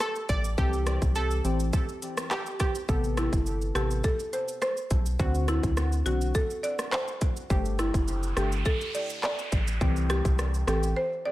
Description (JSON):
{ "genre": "dancehall", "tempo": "104 BPM", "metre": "4/4", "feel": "straight", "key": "A dorian", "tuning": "A4 = 438 Hz", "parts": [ { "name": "analog pluck", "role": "second line", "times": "0.0-2.9 s", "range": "G4 to D5", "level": "-34 LUFS", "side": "right 2 dB", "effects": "chorus, dub echo" }, { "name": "island pop drum kit", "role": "drums", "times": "0.0-11.0 s", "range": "handclaps, hi-hat, kick drum, rim click, shaker", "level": "-29 LUFS", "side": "equal", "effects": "overdrive" }, { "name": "round analog bass", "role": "bass", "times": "0.3-10.9 s", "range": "F#1 to D2", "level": "-28 LUFS", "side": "equal", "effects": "none" }, { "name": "deep mellow chord stab", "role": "accompaniment", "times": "0.6-10.9 s", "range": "C3 to A4", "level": "-34 LUFS", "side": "left 2 dB", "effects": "chorus, dub echo" }, { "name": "buzzing marimba with medium mallets", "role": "melody", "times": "3.2-11.3 s", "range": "E4 to D5", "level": "-31 LUFS", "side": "equal", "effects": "dub echo" }, { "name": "noise sweep", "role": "sound effects", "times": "7.9-11.0 s", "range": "none", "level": "-38 LUFS", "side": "right 2 dB", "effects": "none" } ], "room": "light reverb", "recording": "echo-heavy mix", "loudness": "-25 LUFS", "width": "side -16 dB against mid", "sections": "0.0-2.9 A section; 2.9-11.3 B section", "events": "noise sweep 7.9-11.3; break 11.0-11.3", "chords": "0.0 Gsus2 (rootless); 0.6 C; 2.9 Amadd9; 5.2 D7; 7.5 Gsus2; 9.8 C" }